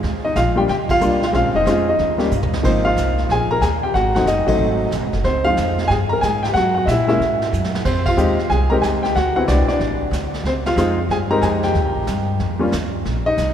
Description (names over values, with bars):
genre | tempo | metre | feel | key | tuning
jazz piano trio | 184 BPM | 4/4 | swing 64% on 8ths | Ab major | A4 = 440 Hz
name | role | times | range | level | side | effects
upright bass | bass | 0.0-13.5 s | F1 to Bb2 | -21 LUFS | equal | none
vintage brush drum kit | drums | 0.0-13.5 s | brushed snare drum, crash cymbal, hi-hat, kick drum, ride cymbal, snare drum, toms | -29 LUFS | right 2 dB | none
warm baby grand piano | melody | 0.2-13.5 s | F3 to Bb5 | -17 LUFS | left 1 dB | none
room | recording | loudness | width
wet cathedral reverb, RT60 5.7 s | recorded in a church or concert hall | -16 LUFS | side -9 dB against mid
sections
0.0-2.6 A section; 2.6-13.1 B section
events
band accent 0.9, 4.4, 8.0; drum fill 2.3-2.6, 7.5-7.9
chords
0.0 Ebmaj9; 1.3 Bbm7; 2.0 Eb7; 2.6 Ab69; 3.9 Ab7b9; 5.2 Dbmaj9; 6.5 Gb9; 7.9 Fm7; 9.2 D13; 10.5 Dbmaj9; 11.8 Ebadd9